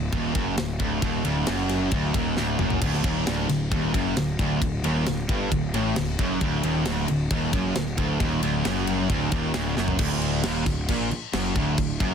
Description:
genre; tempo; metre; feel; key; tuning
heavy metal; 134 BPM; 4/4; straight; unclear; A4 = 440 Hz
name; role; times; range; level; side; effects
crunchy overdriven guitar; riff; 0.0-12.1 s; D2 to Bb2; -29 LUFS; equal; none
distorted electric guitar; riff; 0.0-12.1 s; D2 to Bb2; -30 LUFS; left 12 dB; overdrive
distorted electric guitar; riff; 0.0-12.1 s; D2 to Bb2; -29 LUFS; right 12 dB; overdrive
fuzz picked electric bass; bass; 0.0-12.1 s; D1 to Bb1; -30 LUFS; equal; overdrive
tight metal drum kit; drums; 0.1-12.1 s; crash cymbal, kick drum, ride cymbal, snare drum, toms; -28 LUFS; equal; soft clipping on kick
room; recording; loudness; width
little or no reverb; dense, heavily limited modern master; -22 LUFS; side -7 dB against mid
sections
0.0-10.0 A section; 10.0-12.1 B section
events
drum fill 2.4-2.8, 9.8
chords
0.0 D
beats
0.13 0.58 | 1.02 1.47 1.92 2.37 | 2.82 3.27 3.72 4.17 | 4.62 5.07 5.52 5.97 | 6.42 6.86 7.31 7.76 | 8.21 8.66 9.10 9.55 | 10.00 10.45 10.89 11.34 | 11.79

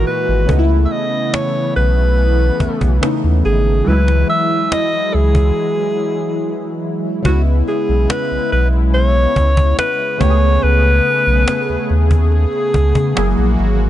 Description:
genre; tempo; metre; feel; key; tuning
contemporary R&B; 71 BPM; 4/4; straight; C# minor; A4 = 440 Hz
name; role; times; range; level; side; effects
mellow alto saxophone; melody; 0.0-13.5 s; F#4 to E5; -18 LUFS; left 1 dB; digital delay
warm analog keys; accompaniment; 0.0-13.9 s; A#2 to G#4; -21 LUFS; equal; chorus, phaser
warm analog pad; sustained chords; 0.0-13.9 s; A#2 to G#4; -24 LUFS; left 2 dB; chorus, tremolo
warm sub bass; bass; 0.0-13.9 s; F#1 to C#3; -14 LUFS; equal; none
cajon; drums; 0.1-13.7 s; none; -19 LUFS; equal; none
room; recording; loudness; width
small room ambience; nothing above 10.5 kHz; -13 LUFS; side -13 dB against mid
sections
0.0-7.2 A section; 7.2-13.9 B section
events
break 5.6-7.2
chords
0.5 B9sus4; 3.9 Eadd9/C#; 7.2 C#m7; 10.2 Amaj9; 13.2 F#9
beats
| 0.49 1.33 2.18 3.02 | 3.87 4.71 5.56 6.40 | 7.25 8.10 8.94 9.79 | 10.63 11.47 12.32 13.16

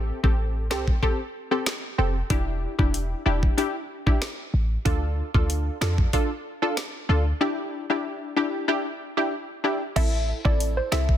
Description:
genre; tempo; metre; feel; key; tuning
dancehall; 94 BPM; 4/4; straight; E phrygian; A4 = 440 Hz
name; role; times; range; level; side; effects
punchy chord stab; accompaniment; 0.0-11.2 s; C4 to A4; -27 LUFS; left 1 dB; chorus, sidechain pumping
short 808-style bass; bass; 0.0-11.2 s; E1 to F2; -24 LUFS; equal; none
afro-pop drum kit; drums; 0.2-11.2 s; crash cymbal, finger snaps, hi-hat, kick drum, snare drum; -24 LUFS; equal; none
soft round pluck; melody; 10.0-11.1 s; C5 to E5; -29 LUFS; left 1 dB; chorus, digital delay
room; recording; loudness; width
digital ambience; dense, heavily limited modern master; -22 LUFS; side -11 dB against mid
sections
0.0-10.0 A section; 10.0-11.2 B section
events
break 7.4-10.0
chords
0.0 Am7; 2.3 Em7; 4.9 Dm; 7.4 Em7; 10.0 Am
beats
0.39 1.03 1.67 | 2.30 2.94 3.58 4.22 | 4.86 5.50 6.13 6.77 | 7.41 8.05 8.69 9.32 | 9.96 10.60

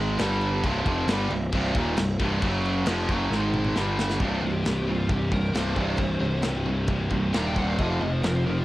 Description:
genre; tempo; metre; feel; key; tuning
heavy metal; 134 BPM; 4/4; straight; unclear; A4 = 440 Hz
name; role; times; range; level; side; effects
high-gain distorted guitar; riff; 0.0-8.6 s; C2 to Ab3; -34 LUFS; left 6 dB; distortion
high-gain distorted guitar; riff; 0.0-8.6 s; C2 to Ab3; -32 LUFS; left 1 dB; distortion
tight distorted guitar; riff; 0.0-8.6 s; C2 to Ab3; -28 LUFS; right 3 dB; distortion
fuzz picked electric bass; bass; 0.0-8.6 s; C1 to Ab1; -27 LUFS; equal; overdrive, transformer saturation
modern studio drum kit; drums; 0.2-8.3 s; crash cymbal, kick drum, snare drum, toms; -30 LUFS; equal; cassette tape
high-gain lead guitar; melody; 4.5-8.6 s; F4 to Bb5; -33 LUFS; left 1 dB; distortion, cassette tape
room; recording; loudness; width
little or no reverb; home recording on cassette; -23 LUFS; side -16 dB against mid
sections
0.0-4.2 A section; 4.2-8.6 B section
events
drum fill 3.3-4.2; lead electric guitar solo 4.2-8.6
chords
0.2 G5; 0.6 Cm; 2.4 F#5; 2.9 Dbadd11/F; 3.3 Ab5; 3.8 G5; 4.2 C5; 7.8 F5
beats
0.19 | 0.63 1.08 1.53 1.97 | 2.42 2.87 3.31 3.76 | 4.21 4.65 5.10 5.55 | 6.00 6.45 6.89 7.34 | 7.79 8.24

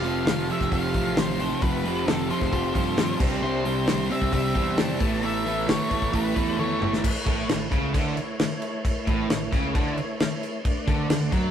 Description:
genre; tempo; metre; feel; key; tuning
classic rock; 133 BPM; 4/4; straight; unclear; A4 = 441 Hz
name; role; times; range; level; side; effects
octave-fuzz lead guitar; melody; 0.0-6.9 s; A4 to A5; -31 LUFS; left 1 dB; distortion, tape echo
bright tonewheel organ; sustained chords; 0.0-11.5 s; A3 to F5; -36 LUFS; left 1 dB; none
raw garage guitar; riff; 0.0-11.5 s; F2 to C4; -31 LUFS; left 4 dB; overdrive, spring reverb
sludgy distorted guitar; riff; 0.0-11.5 s; F2 to C4; -27 LUFS; right 4 dB; overdrive
growling fingered electric bass; bass; 0.0-11.5 s; F1 to G2; -33 LUFS; left 1 dB; overdrive
damped 70s drum kit; drums; 0.0-11.4 s; crash cymbal, hi-hat, kick drum, snare drum, toms; -26 LUFS; left 1 dB; none
room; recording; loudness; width
moderate stone room reverb, RT60 1.2 s; rough rehearsal-room recording; -22 LUFS; side -9 dB against mid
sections
0.0-7.0 A section; 7.0-11.5 B section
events
drum fill 6.6-7.0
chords
0.0 F; 3.2 Cadd9; 5.0 Aadd9; 7.0 A; 10.6 D5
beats
0.27 0.72 1.17 | 1.62 2.07 2.52 2.98 | 3.43 3.88 4.33 4.78 | 5.23 5.68 6.13 6.58 | 7.03 7.48 7.93 8.39 | 8.84 9.29 9.74 10.19 | 10.64 11.09

